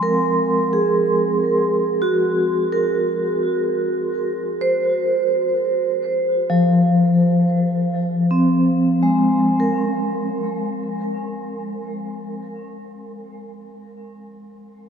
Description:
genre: ambient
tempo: free time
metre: none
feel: none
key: unclear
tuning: A4 = 437 Hz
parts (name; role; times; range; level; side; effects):
- vibraphone with medium hard mallets; solo; 0.0-14.9 s; F3 to C6; -18 LUFS; equal; diffuse ambient delay
room: wet huge ambient reverb, RT60 8.9 s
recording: dark, warm production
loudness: -17 LUFS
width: side -7 dB against mid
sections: 0.0-9.6 A section; 9.6-13.4 B section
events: none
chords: 0.0 Fmadd11; 9.6 Absus2

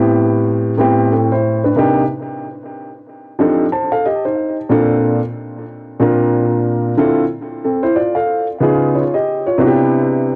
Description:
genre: hip hop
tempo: 92 BPM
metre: 4/4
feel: swing 59% on 16ths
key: unclear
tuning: A4 = 444 Hz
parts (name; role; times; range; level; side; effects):
- warm grand piano; solo; 0.0-10.4 s; A2 to A5; -16 LUFS; equal; cassette tape, analog delay
room: moderate small room reverb, RT60 0.5 s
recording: home recording on cassette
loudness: -15 LUFS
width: mono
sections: 0.0-10.4 A section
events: none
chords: 0.0 Am9; 1.8 Cm7; 3.1 F13; 4.4 Bbmaj9; 7.0 Dm7; 8.3 C#9; 9.6 Cmaj7

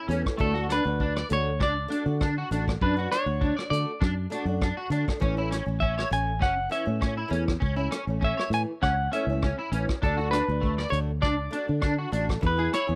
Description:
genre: highlife guitar band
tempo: 100 BPM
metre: 4/4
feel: swing 54% on 16ths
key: unclear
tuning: A4 = 440 Hz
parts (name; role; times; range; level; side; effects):
- electric guitar at the edge of break-up; arpeggios; 0.0-12.8 s; A3 to D5; -34 LUFS; equal; analog chorus, slapback echo
- picked old ladder-braced acoustic guitar; accompaniment; 0.1-13.0 s; E3 to A4; -36 LUFS; equal; none
- fingered electric bass; bass; 0.1-13.0 s; F#1 to D3; -31 LUFS; equal; none
- vintage drum kit; drums; 0.1-12.9 s; hi-hat, kick drum, rim click; -31 LUFS; equal; none
- semi-hollow electric guitar; melody; 0.4-13.0 s; A4 to G#5; -31 LUFS; equal; none
room: small room ambience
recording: dry, close 1970s-style studio recording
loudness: -27 LUFS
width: mono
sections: 0.0-13.0 A section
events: none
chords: 0.4 D; 5.2 A; 10.0 D; 12.4 E

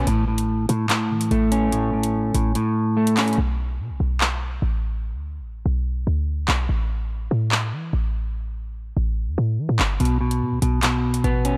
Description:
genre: hip hop, drill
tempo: 145 BPM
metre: 4/4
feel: half-time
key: unclear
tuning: A4 = 440 Hz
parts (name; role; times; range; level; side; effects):
- clean electric guitar; accompaniment; 0.0-3.4, 10.0-11.6 s; A2 to C#4; -23 LUFS; equal; low-pass filter
- short 808-style bass; bass; 0.0-11.6 s; G1 to E3; -26 LUFS; equal; none
- drill drum kit; drums; 0.1-11.5 s; handclaps, hi-hat; -27 LUFS; equal; none
room: light reverb, digital ambience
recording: dark, warm production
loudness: -22 LUFS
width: mono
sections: 0.0-11.6 A section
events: kick muted 2.6-3.4; break 3.4-10.0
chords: 0.1 A; 3.4 Bm; 6.7 A5; 10.0 N.C.

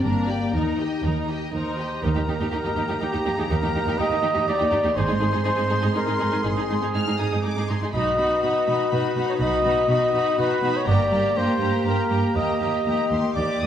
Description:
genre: cinematic, heroic adventure film score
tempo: 122 BPM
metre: 3/4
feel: straight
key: Eb major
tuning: A4 = 440 Hz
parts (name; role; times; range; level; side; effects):
- warm symphonic violin section; melody; 0.0-13.7 s; G5 to F6; -33 LUFS; left 2 dB; none
- rich symphonic violin section; second line; 0.0-13.7 s; F#4 to Eb5; -32 LUFS; left 1 dB; none
- rich symphonic viola section; accompaniment; 0.0-13.7 s; Bb3 to G4; -30 LUFS; right 2 dB; none
- dark French horn section; sustained chords; 0.0-13.6 s; Bb3 to Ab4; -28 LUFS; left 2 dB; none
- dark symphonic cello section; bass; 0.0-13.7 s; Eb2 to B2; -27 LUFS; right 2 dB; none
- dark symphonic double bass section; bass; 0.0-12.6 s; G1 to Eb2; -28 LUFS; right 2 dB; none
- mellow trumpet; stabs; 1.5-13.4 s; G4 to Eb5; -24 LUFS; equal; none
- warm oboe; second line; 13.4-13.7 s; D5; -26 LUFS; right 2 dB; none
room: wet recital hall reverb, RT60 1.3 s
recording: recorded in a church or concert hall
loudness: -20 LUFS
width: side -9 dB against mid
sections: 0.0-2.0 A section; 2.0-13.7 A section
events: none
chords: 0.0 Gm; 0.5 Eb; 5.0 Ab; 7.9 B; 10.9 Gm; 12.4 Eb

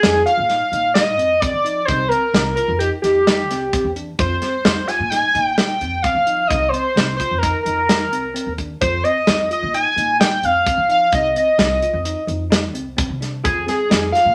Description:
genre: progressive instrumental, band music in an uneven meter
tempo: 130 BPM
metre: 5/4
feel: straight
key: C minor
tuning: A4 = 440 Hz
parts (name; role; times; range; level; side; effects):
- pulse-width lead; melody; 0.0-14.3 s; G4 to Ab5; -19 LUFS; equal; chorus
- bell-like tine electric piano; arpeggios; 0.0-14.3 s; C4 to F4; -32 LUFS; equal; none
- upright bass; bass; 0.0-14.3 s; C2 to F3; -29 LUFS; equal; none
- modern studio drum kit; drums; 0.0-14.3 s; hi-hat, kick drum, snare drum; -22 LUFS; equal; none
room: wet studio reverb, RT60 0.6 s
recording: none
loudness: -18 LUFS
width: mono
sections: 0.0-14.3 A section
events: none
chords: 0.0 F7(no3); 1.9 Cm7; 4.2 Fm7; 6.5 Cm7; 8.8 F7(no3); 11.1 Cm; 13.4 Fm7

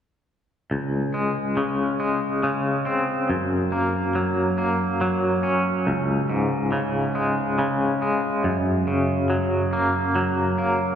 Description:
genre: rock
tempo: 46 BPM (dotted quarters)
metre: 6/8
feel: straight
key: unclear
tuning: A4 = 439 Hz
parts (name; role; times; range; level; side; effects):
- twangy electric guitar; arpeggios; 0.7-11.0 s; Db2 to Db4; -20 LUFS; equal; tremolo
room: wet church reverb, RT60 3.5 s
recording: recorded in a church or concert hall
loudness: -21 LUFS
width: side -8 dB against mid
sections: 0.7-5.9 A section; 5.9-11.0 B section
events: none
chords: 0.7 Db5; 3.3 Gb; 5.9 Db5; 8.4 Gb

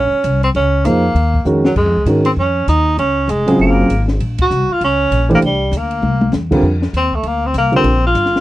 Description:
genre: modal jazz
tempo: 197 BPM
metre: 4/4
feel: swing 61% on 8ths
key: Gb lydian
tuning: A4 = 440 Hz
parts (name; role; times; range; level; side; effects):
- warm tenor saxophone; melody; 0.0-8.4 s; Gb3 to Gb4; -16 LUFS; equal; none
- upright bass; bass; 0.0-8.4 s; F1 to Ab2; -17 LUFS; equal; none
- compact cocktail drum kit; drums; 0.2-8.4 s; crash cymbal, hi-hat, kick drum, ride cymbal, snare drum, toms; -21 LUFS; left 1 dB; none
- warm concert grand piano; accompaniment; 0.8-7.8 s; Db3 to C5; -14 LUFS; right 1 dB; none
room: little or no reverb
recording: dry, close 1970s-style studio recording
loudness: -12 LUFS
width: side -16 dB against mid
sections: 0.0-6.6 A section; 6.6-8.4 B section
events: drum fill 1.5-1.8, 6.0-6.3; band accent 4.3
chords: 0.0 Gbmaj9; 5.4 C7; 6.6 F9sus4

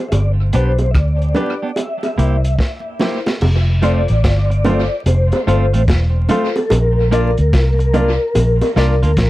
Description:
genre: roots reggae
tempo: 73 BPM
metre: 4/4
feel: swing 64% on 16ths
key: F major from 3.4 s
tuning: A4 = 439 Hz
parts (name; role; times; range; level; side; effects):
- mellow tonewheel organ; melody; 0.0-9.3 s; A4 to E5; -21 LUFS; left 2 dB; chorus vibrato, slow rotary speaker, tape echo
- warm grand piano; stabs; 0.0-8.9 s; D4 to D5; -23 LUFS; left 4 dB; none
- vintage muted fingered electric bass; bass; 0.1-9.3 s; E1 to D2; -14 LUFS; equal; none
- crunchy breakbeat drum kit; drums; 0.1-9.3 s; crash cymbal, hi-hat, kick drum, rim click, snare drum; -21 LUFS; equal; tape echo
- bongos; percussion; 0.1-8.8 s; none; -21 LUFS; right 2 dB; none
- clean electric guitar; accompaniment; 0.5-9.1 s; A3 to G4; -23 LUFS; right 4 dB; tape echo
room: little or no reverb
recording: dry, close 1970s-style studio recording, vinyl crackle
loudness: -13 LUFS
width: side -16 dB against mid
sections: 0.0-3.4 A section; 3.4-9.3 B section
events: drum fill 2.6-3.4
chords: 0.1 G; 1.8 C7; 3.4 F; 6.7 Bb

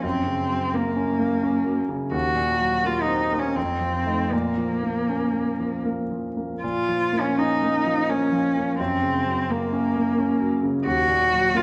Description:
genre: classical, romantic duo for cello and grand piano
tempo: 76-90 BPM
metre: 3/4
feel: rubato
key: Bb minor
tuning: A4 = 440 Hz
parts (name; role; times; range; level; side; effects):
- rich cello; melody; 0.0-11.6 s; Bb3 to Gb4; -25 LUFS; equal; none
- clear concert grand piano; accompaniment; 0.0-11.6 s; Eb2 to Eb4; -28 LUFS; equal; none
room: wet recital hall reverb, RT60 1.6 s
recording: none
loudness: -23 LUFS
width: mono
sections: 0.0-6.6 A section; 6.6-11.6 A section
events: none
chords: 0.0 Gb; 2.1 Cm7b5/Eb; 3.6 F7; 4.3 Bbm; 8.8 Gb; 10.8 Cm7b5/Eb (rootless)

